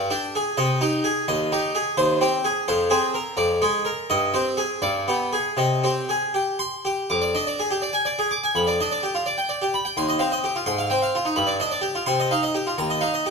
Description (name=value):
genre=classical, baroque-style suite movement for harpsichord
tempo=85 BPM (dotted quarters)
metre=6/8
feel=rubato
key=C minor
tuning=A4 = 439 Hz
part: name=harpsichord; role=solo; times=0.0-13.3 s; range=Eb2 to D6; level=-20 LUFS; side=equal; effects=none
room=wet recital hall reverb, RT60 1.4 s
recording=none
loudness=-20 LUFS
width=side -4 dB against mid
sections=0.0-7.1 A section; 7.1-13.3 A section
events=none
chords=0.0 G5; 0.6 Cm; 1.3 Eb; 2.0 Cm/Eb; 2.7 Fm; 3.4 Ddim/F; 4.1 Cm/G; 4.8 G; 5.6 Cm; 7.1 Ddim/F; 8.5 G7/F; 10.0 Cm/Eb; 10.7 Fm/Ab; 11.4 G; 12.1 Cm; 12.8 Eb5